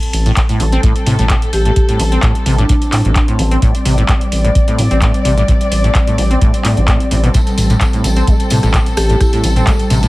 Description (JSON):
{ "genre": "acid house", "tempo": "129 BPM", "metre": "4/4", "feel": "swing 53% on 16ths", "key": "A minor", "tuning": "A4 = 440 Hz", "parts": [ { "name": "dark studio string section", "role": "sustained chords", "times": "0.0-10.1 s", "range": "G3 to D5", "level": "-20 LUFS", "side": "left 1 dB", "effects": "sidechain pumping" }, { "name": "booming analog drum machine", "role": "drums", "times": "0.0-10.1 s", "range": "handclaps, hi-hat, rim click, toms", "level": "-20 LUFS", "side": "equal", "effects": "studio ambience" }, { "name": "round analog bass", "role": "bass", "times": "0.1-10.1 s", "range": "A1 to A2", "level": "-14 LUFS", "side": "equal", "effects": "tube saturation, sidechain pumping" }, { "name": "acid bass, saw", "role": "riff", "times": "0.3-10.1 s", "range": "G2 to C4", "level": "-18 LUFS", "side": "equal", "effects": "tube saturation, lush chorus, tape echo" }, { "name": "electronic kick drum", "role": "drums", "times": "0.4-9.8 s", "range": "none", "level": "-14 LUFS", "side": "equal", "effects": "studio ambience" }, { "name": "vibraphone with medium hard mallets", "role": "melody", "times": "1.5-3.5, 9.0-9.4 s", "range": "C4 to G4", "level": "-21 LUFS", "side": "equal", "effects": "tape echo" }, { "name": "tambourine", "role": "percussion", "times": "7.3-10.1 s", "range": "none", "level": "-27 LUFS", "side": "left 2 dB", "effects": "none" } ], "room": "light reverb", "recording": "heavily compressed radio sound", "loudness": "-10 LUFS", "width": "side -19 dB against mid", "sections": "0.0-10.1 A section", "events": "none", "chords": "0.0 Am7", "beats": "0.37 0.83 1.30 | 1.76 2.23 2.69 3.16 | 3.62 4.09 4.55 5.02 | 5.49 5.95 6.42 6.88 | 7.34 7.81 8.28 8.74 | 9.21 9.67" }